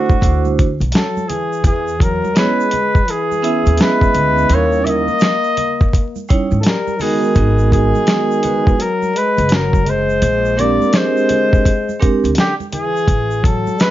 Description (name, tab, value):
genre	hip hop, jazz-hop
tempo	84 BPM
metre	4/4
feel	swing 65% on 16ths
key	unclear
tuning	A4 = 441 Hz
part	warm flugelhorn	melody	0.0-13.9 s	F#4 to E5	-18 LUFS	equal	slapback echo
part	breathy trombone	second line	0.0-13.9 s	D3 to C#4	-22 LUFS	left 6 dB	none
part	vibraphone with medium mallets	accompaniment	0.0-12.3 s	G3 to E5	-18 LUFS	right 5 dB	none
part	dusty soul sampler-style drum kit	drums	0.1-13.9 s	hi-hat, kick drum, snare drum	-15 LUFS	equal	vintage 12-bit sampler grit
part	tube shaker and congas	percussion	0.1-13.9 s	none	-31 LUFS	right 6 dB	none
part	upright bass	bass	0.2-13.6 s	F#1 to G#2	-18 LUFS	equal	none
room	moderate studio reverb, RT60 0.6 s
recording	vinyl crackle, nothing above 7.4 kHz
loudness	-13 LUFS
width	side -14 dB against mid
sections	0.0-13.9 A section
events	none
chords	0.2 D9; 1.6 E6; 4.5 D#7b9; 7.4 G#m9; 10.2 A#13; 13.1 Amaj7(no3)